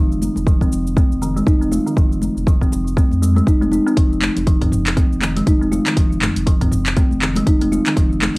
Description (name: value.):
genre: afro house.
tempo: 120 BPM.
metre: 4/4.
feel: swing 58% on 16ths.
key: F minor.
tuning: A4 = 436 Hz.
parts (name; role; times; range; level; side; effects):
kalimba; arpeggios; 0.0-8.0 s; Eb3 to F4; -19 LUFS; equal; sidechain pumping, low-pass filter, cassette tape, tape echo.
warm sub bass; bass; 0.0-8.4 s; F1 to F2; -23 LUFS; equal; sidechain pumping.
house drum kit; drums; 0.1-8.3 s; handclaps, hi-hat, shaker, toms; -22 LUFS; equal; studio reverb, cassette tape.
congas; percussion; 0.2-8.4 s; none; -26 LUFS; left 2 dB; none.
electronic kick drum; drums; 0.5-8.1 s; none; -15 LUFS; equal; studio reverb, cassette tape.
room: light reverb.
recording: home recording on cassette.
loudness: -14 LUFS.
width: side -25 dB against mid.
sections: 0.0-8.4 A section.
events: filter sweep on kalimba 0.0-8.4.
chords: none.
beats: 0.47 0.97 1.47 | 1.97 2.47 2.97 3.47 | 3.97 4.47 4.97 5.47 | 5.97 6.47 6.97 7.47 | 7.97.